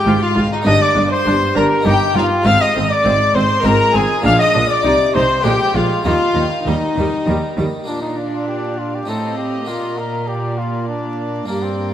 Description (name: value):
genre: classical, baroque-style concerto movement with solo episodes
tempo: 100 BPM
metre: 3/4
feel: straight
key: Eb major, Bb major from 7.9 s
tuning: A4 = 440 Hz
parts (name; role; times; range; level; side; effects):
- mellow trumpet; melody; 0.0-11.9 s; Bb3 to F5; -19 LUFS; left 1 dB; none
- rich chamber violin section; melody; 0.0-11.9 s; Eb5 to F6; -24 LUFS; left 4 dB; none
- rich chamber violin section; second line; 0.0-11.9 s; Eb4 to F5; -22 LUFS; left 2 dB; none
- harpsichord; accompaniment; 0.0-11.9 s; G2 to F4; -25 LUFS; right 1 dB; none
- warm chamber viola section; accompaniment; 0.1-11.9 s; G3 to F4; -24 LUFS; right 2 dB; none
- rich chamber double bass section; bass; 0.1-7.7 s; G1 to Eb2; -22 LUFS; right 2 dB; none
- warm chamber cello section; bass; 0.1-11.9 s; G2 to Eb3; -22 LUFS; right 2 dB; none
room: wet concert hall reverb, RT60 1.7 s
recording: vinyl crackle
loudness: -14 LUFS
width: side -10 dB against mid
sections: 0.0-7.9 A section; 7.9-11.9 B section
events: none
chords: 0.0 Fm/Ab; 0.7 Gm; 1.9 Eb/G; 2.5 Ab; 3.6 Fm/Ab; 4.2 Bb7; 4.8 Cm; 5.4 Bb7; 6.0 Eb; 7.9 Bb; 9.1 F7/A; 9.7 Bb